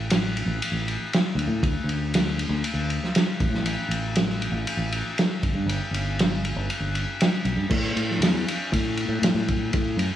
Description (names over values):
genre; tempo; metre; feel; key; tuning
psychedelic rock; 118 BPM; 4/4; straight; unclear; A4 = 442 Hz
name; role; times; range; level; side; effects
fingered electric bass; bass; 0.0-10.1 s; G1 to A2; -26 LUFS; equal; none
vintage drum kit; drums; 0.1-10.1 s; crash cymbal, kick drum, ride cymbal, snare drum; -24 LUFS; equal; none
room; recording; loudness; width
light reverb; studio reverb; -22 LUFS; side -11 dB against mid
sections
0.0-7.7 A section; 7.7-10.2 B section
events
none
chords
none